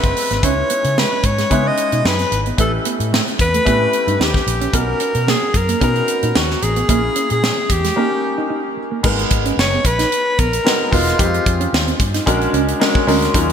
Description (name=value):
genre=polished 1980s jazz-funk pop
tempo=112 BPM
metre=4/4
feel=swing 54% on 16ths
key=G# dorian from 9.0 s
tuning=A4 = 439 Hz
part: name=breathy alto saxophone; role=melody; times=0.0-12.0 s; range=E#4 to D#5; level=-20 LUFS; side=left 1 dB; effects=ping-pong delay
part: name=warm grand piano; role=accompaniment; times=0.0-13.5 s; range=F#3 to B4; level=-21 LUFS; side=left 2 dB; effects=lush chorus
part: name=vintage muted fingered electric bass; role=bass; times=0.0-13.5 s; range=E1 to C#3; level=-21 LUFS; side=equal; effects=none
part: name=tight funk drum kit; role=drums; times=0.0-13.5 s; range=crash cymbal, hi-hat, kick drum, snare drum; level=-19 LUFS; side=equal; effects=gated reverb
part: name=mellow electric guitar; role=riff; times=0.2-13.4 s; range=G#3 to F4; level=-24 LUFS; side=right 6 dB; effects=lush chorus
room=moderate lush hall reverb, RT60 2.5 s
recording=bright 1980s-style digital production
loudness=-14 LUFS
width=side -8 dB against mid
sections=0.0-9.0 A section; 9.0-13.5 B section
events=break 8.0-9.0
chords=0.4 C#m9; 2.6 A9; 4.7 Bmaj9; 6.9 A#m7b5; 8.0 D#7; 9.0 G#m9; 11.2 Fm9; 12.3 A#7alt